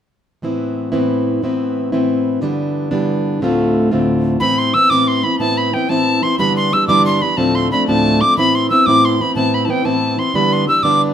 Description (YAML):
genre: celtic folk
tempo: 121 BPM (dotted quarters)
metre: 6/8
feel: straight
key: A minor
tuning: A4 = 440 Hz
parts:
  - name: fingerpicked plugged-in steel-string acoustic guitar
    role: accompaniment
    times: 0.4-11.1 s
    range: D2 to F4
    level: -16 LUFS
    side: equal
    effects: none
  - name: bright wooden whistle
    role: melody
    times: 4.4-11.0 s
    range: G5 to E6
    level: -15 LUFS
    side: equal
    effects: none
room: wet studio reverb, RT60 0.8 s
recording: minimal, uncompressed stereo recording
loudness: -13 LUFS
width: side -9 dB against mid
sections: 0.4-4.4 A section; 4.4-11.1 B section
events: none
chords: 0.4 Amadd9; 2.4 G6; 3.4 Dm7; 4.4 Amadd9; 6.4 G6; 7.4 Dm7; 8.4 Amadd9; 10.3 G6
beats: | 0.45 0.94 | 1.44 1.93 | 2.43 2.92 | 3.42 3.91 | 4.41 4.90 | 5.40 5.89 | 6.39 6.88 | 7.38 7.87 | 8.37 8.86 | 9.36 9.85 | 10.35 10.84